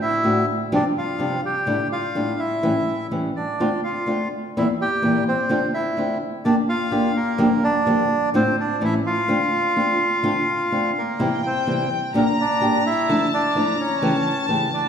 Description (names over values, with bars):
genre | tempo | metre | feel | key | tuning
tango | 127 BPM | 4/4 | rubato | D minor | A4 = 440 Hz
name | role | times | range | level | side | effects
bandoneon | melody | 0.0-14.9 s | Bb3 to G5 | -22 LUFS | right 1 dB | none
flamenco guitar | accompaniment | 0.2-14.7 s | E2 to G4 | -22 LUFS | equal | none
rich studio violin section | second line | 11.2-14.9 s | G5 to Bb5 | -24 LUFS | left 2 dB | none
room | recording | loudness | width
wet recital hall reverb, RT60 1.6 s | recorded in a church or concert hall | -19 LUFS | side -8 dB against mid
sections
0.0-14.9 A section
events
none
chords
0.0 D7; 0.7 G7sus4; 1.7 A7sus4; 2.6 A7; 3.6 Dm7; 4.5 Edim; 5.5 Dm7; 6.4 Bb6/D; 7.4 Gm7; 8.3 Dm/A; 8.8 A; 9.3 Dm7; 11.2 C; 12.1 Gm/Bb; 13.1 Dmadd9; 14.0 A7/C#